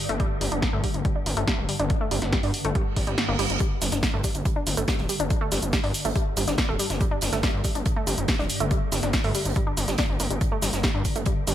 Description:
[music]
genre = driving peak-time techno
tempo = 141 BPM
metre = 4/4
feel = straight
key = unclear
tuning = A4 = 440 Hz
[part]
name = swarming drone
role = drone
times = 0.0-11.5 s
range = G2 to D3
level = -33 LUFS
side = left 1 dB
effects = built-in reverb, sidechain pumping
[part]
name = analog pluck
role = riff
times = 0.1-11.5 s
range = G3 to D4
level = -30 LUFS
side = equal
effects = chorus, tube saturation, sidechain pumping, ping-pong delay
[part]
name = gritty driven synth bass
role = bass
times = 0.1-11.5 s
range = D1 to G2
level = -28 LUFS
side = equal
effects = sidechain pumping
[part]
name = punchy analog drum machine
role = drums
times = 0.1-11.5 s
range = hi-hat, shaker, snare drum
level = -28 LUFS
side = equal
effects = sidechain pumping on hats, sidechain pumping on perc
[part]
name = electronic kick drum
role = drums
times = 0.2-11.3 s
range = none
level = -26 LUFS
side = equal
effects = none
[part]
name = reverse cymbal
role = sound effects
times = 2.9-3.6 s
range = none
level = -33 LUFS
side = right 8 dB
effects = none
[part]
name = crisp fusion drum kit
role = drums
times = 3.6-11.5 s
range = hi-hat, snare drum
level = -37 LUFS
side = right 3 dB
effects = high-pass filter on hats, high-pass filter on snare, high-pass filter on room
[sound]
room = light reverb, digital ambience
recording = bright 1980s-style digital production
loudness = -22 LUFS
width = side -11 dB against mid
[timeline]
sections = 0.0-11.5 A section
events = reverse cymbal 2.9-3.6; kick drops out 3.2-3.6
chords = 0.0 G5

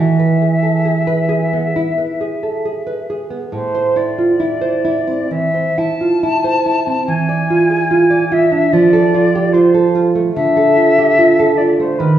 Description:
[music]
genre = romantic duo for flute and classical guitar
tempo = 62-75 BPM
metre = 4/4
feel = rubato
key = A minor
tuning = A4 = 437 Hz
[part]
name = silver concert flute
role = melody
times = 0.0-12.2 s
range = B4 to A5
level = -17 LUFS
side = left 3 dB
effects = none
[part]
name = nylon-string guitar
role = accompaniment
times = 0.0-12.2 s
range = A2 to D5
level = -14 LUFS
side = right 2 dB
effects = none
[sound]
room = wet recital hall reverb, RT60 1.4 s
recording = recorded in a church or concert hall, studio ambience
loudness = -12 LUFS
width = side -11 dB against mid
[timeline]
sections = 0.0-12.2 A section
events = none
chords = 0.0 E; 3.5 Am; 7.1 E7b9; 8.7 F; 10.3 Dmadd9

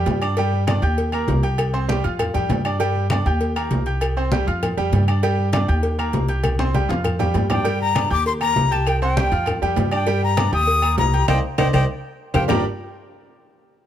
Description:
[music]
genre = latin, salsa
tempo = 198 BPM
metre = 4/4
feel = straight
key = G minor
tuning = A4 = 440 Hz
[part]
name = bright baby grand piano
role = accompaniment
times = 0.0-12.6 s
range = G3 to G6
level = -24 LUFS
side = right 2 dB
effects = none
[part]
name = upright bass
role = bass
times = 0.0-12.6 s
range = G1 to G2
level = -22 LUFS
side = equal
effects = none
[part]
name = congas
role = percussion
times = 0.1-12.6 s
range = none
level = -25 LUFS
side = left 2 dB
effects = none
[part]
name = cowbell and bongos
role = percussion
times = 0.1-12.6 s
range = none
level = -29 LUFS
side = left 2 dB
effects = none
[part]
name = timbales and agogo bells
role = percussion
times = 0.1-12.6 s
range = none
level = -28 LUFS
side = right 2 dB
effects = none
[part]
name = claves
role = percussion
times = 0.2-12.6 s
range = none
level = -34 LUFS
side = left 8 dB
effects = none
[part]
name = bright silver concert flute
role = melody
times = 7.5-12.6 s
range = G5 to Eb6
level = -22 LUFS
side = left 4 dB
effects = none
[sound]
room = little or no reverb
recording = close, detailed microphones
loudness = -18 LUFS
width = side -10 dB against mid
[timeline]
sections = 0.0-7.7 A section; 7.7-12.5 B section; 12.5-13.7 C section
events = drum fill 6.4-7.7, 11.7-12.5; band accent 11.3-12.5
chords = 0.4 G5; 1.0 Eb; 1.6 C5; 2.2 Fsus2; 2.8 G5; 3.4 Eb; 4.0 C5; 4.6 Fsus2; 5.2 G5; 5.8 Eb; 6.4 C5; 7.0 Fsus2; 7.7 Gm; 8.3 Eb; 8.9 C5; 9.5 Fsus2; 10.1 Gm; 10.7 Eb; 11.3 Cmadd9; 11.9 Fsus2; 12.5 G5

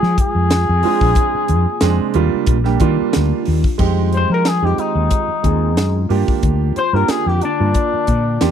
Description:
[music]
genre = electric jazz fusion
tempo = 91 BPM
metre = 4/4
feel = swing 55% on 16ths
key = F dorian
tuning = A4 = 441 Hz
[part]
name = trumpet with cup mute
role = melody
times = 0.0-8.5 s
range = D4 to C5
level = -19 LUFS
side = left 4 dB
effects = slapback echo
[part]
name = warm baby grand piano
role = accompaniment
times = 0.0-8.5 s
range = G3 to Bb4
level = -20 LUFS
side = right 13 dB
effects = none
[part]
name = ethereal airy pad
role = sustained chords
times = 0.0-8.5 s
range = D3 to G5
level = -27 LUFS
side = left 2 dB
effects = ensemble chorus, built-in reverb
[part]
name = mellow fretless electric bass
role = bass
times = 0.0-8.5 s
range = Bb1 to F3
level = -17 LUFS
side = left 1 dB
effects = none
[part]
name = crisp fusion drum kit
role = drums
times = 0.0-8.5 s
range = crash cymbal, hi-hat, kick drum, snare drum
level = -19 LUFS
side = left 1 dB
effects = none
[part]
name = vintage hollow-body jazz guitar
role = second line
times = 4.2-8.5 s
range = D4 to C5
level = -26 LUFS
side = left 4 dB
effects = none
[sound]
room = small room ambience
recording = dry, close 1970s-style studio recording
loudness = -14 LUFS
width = side -8 dB against mid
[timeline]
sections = 0.0-3.8 A section; 3.8-8.5 B section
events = muted trumpet solo 0.0-3.8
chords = 0.0 Fm; 0.8 Bb9; 2.2 Ebmaj9; 3.8 Fm9; 6.1 Gm7

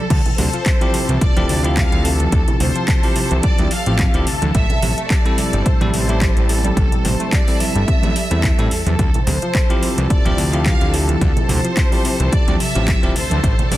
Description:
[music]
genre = nu-disco, nu disco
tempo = 108 BPM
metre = 4/4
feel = swing 55% on 16ths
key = D minor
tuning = A4 = 440 Hz
[part]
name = warm studio violin section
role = melody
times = 0.0-13.8 s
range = A4 to F5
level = -26 LUFS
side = right 1 dB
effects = analog delay
[part]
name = lush unison pad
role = sustained chords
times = 0.0-13.8 s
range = A4 to A5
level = -28 LUFS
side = equal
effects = chorus, phaser, vintage 12-bit sampler grit, sidechain pumping
[part]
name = analog pluck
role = arpeggios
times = 0.0-13.8 s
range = C3 to E4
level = -27 LUFS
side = left 3 dB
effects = chorus, sidechain pumping, analog delay
[part]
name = fat analog bass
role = bass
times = 0.1-13.8 s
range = D1 to A2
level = -19 LUFS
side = equal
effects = none
[part]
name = electronic kick drum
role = drums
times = 0.1-13.6 s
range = none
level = -17 LUFS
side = equal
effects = overdrive
[part]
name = house drum kit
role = drums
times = 0.1-13.8 s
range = crash cymbal, handclaps, hi-hat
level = -25 LUFS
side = equal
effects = overdrive
[part]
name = congas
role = percussion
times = 0.3-13.8 s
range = none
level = -27 LUFS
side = right 3 dB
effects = none
[part]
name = bell-like tine electric piano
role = accompaniment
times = 0.8-13.1 s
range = F3 to A4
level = -24 LUFS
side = equal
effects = none
[sound]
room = digital ambience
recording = dense, heavily limited modern master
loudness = -14 LUFS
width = side -15 dB against mid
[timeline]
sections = 0.0-13.8 A section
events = none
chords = 0.1 Dm11; 4.5 Am7; 9.0 Dm11

